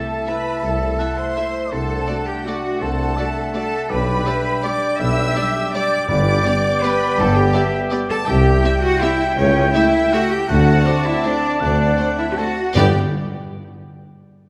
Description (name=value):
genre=classical, orchestral ballroom waltz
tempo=163 BPM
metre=3/4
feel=uneven beats, rubato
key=G major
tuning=A4 = 440 Hz
part: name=dark cor anglais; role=second line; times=0.0-12.6 s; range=G4 to A5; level=-30 LUFS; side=equal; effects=none
part: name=mellow hollow flute section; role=second line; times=0.0-13.0 s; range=C#5 to E6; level=-30 LUFS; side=equal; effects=none
part: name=warm studio violin section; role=second line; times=0.0-13.0 s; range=C#5 to E6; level=-32 LUFS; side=equal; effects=none
part: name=mellow French horn section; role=sustained chords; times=0.0-12.9 s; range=G3 to E4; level=-29 LUFS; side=equal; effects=none
part: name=mellow trumpet section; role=stabs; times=0.0-12.9 s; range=E5 to A5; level=-29 LUFS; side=equal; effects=none
part: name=rich studio cello section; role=bass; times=0.0-13.0 s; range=C#4 to E5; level=-25 LUFS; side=equal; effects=none
part: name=rich studio violin section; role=melody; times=0.3-13.0 s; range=C5 to E5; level=-33 LUFS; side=equal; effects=none
part: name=rich studio viola section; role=accompaniment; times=0.3-13.0 s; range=G3 to A4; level=-31 LUFS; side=equal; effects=none
part: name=rich studio double bass section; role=bass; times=0.6-13.0 s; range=G1 to G2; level=-24 LUFS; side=equal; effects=none
part: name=warm tuba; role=bass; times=0.6-12.9 s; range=G1 to D2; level=-28 LUFS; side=equal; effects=none
part: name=timpani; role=percussion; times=6.1-6.6, 12.8-12.9 s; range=G2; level=-26 LUFS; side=equal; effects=none
room=moderate concert hall reverb, RT60 2.3 s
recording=none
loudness=-18 LUFS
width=mono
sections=0.0-12.8 A section; 12.8-13.9 B section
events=none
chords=0.0 Am; 1.7 D7/C; 3.9 G/B; 6.1 G; 8.3 C; 9.4 A7/C#; 10.5 D7; 12.8 G